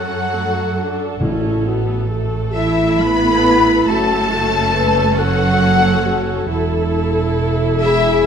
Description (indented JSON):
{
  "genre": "cinematic, emotional film score for orchestra",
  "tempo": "46 BPM (dotted quarters)",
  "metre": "6/8",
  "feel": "rubato",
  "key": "A major",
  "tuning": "A4 = 440 Hz",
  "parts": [
    { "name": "rich studio violin section", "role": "melody", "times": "0.0-8.2 s", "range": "E5 to B5", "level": "-21 LUFS", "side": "left 6 dB", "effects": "none" },
    { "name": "mellow large flute ensemble", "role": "second line", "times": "0.0-8.3 s", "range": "E5 to B5", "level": "-25 LUFS", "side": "left 1 dB", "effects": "none" },
    { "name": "warm oboe", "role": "second line", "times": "0.0-8.3 s", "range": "E5 to B5", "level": "-24 LUFS", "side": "equal", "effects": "none" },
    { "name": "warm studio violin section", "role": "second line", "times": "0.0-8.2 s", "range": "E4 to B4", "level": "-24 LUFS", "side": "left 4 dB", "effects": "none" },
    { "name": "rich studio viola section", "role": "accompaniment", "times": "0.0-8.3 s", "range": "A3 to A4", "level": "-23 LUFS", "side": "right 2 dB", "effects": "none" },
    { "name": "dark French horn section", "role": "sustained chords", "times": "0.0-8.3 s", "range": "E4 to B4", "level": "-20 LUFS", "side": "left 2 dB", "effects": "none" },
    { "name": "rich studio double bass section", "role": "bass", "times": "0.0-8.3 s", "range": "E1 to F#2", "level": "-21 LUFS", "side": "right 3 dB", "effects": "none" },
    { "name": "warm studio cello section", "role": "bass", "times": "0.0-8.2 s", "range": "E3 to B3", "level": "-22 LUFS", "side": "right 4 dB", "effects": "none" },
    { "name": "timpani", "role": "percussion", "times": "1.2-2.5 s", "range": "A2", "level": "-27 LUFS", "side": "equal", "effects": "none" }
  ],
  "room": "wet scoring stage reverb, RT60 1.6 s",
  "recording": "none",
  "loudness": "-14 LUFS",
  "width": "side -7 dB against mid",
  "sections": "0.0-8.3 A section",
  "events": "none",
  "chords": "0.0 Dmaj7/F#; 1.2 A; 3.9 F#m; 6.5 Esus4"
}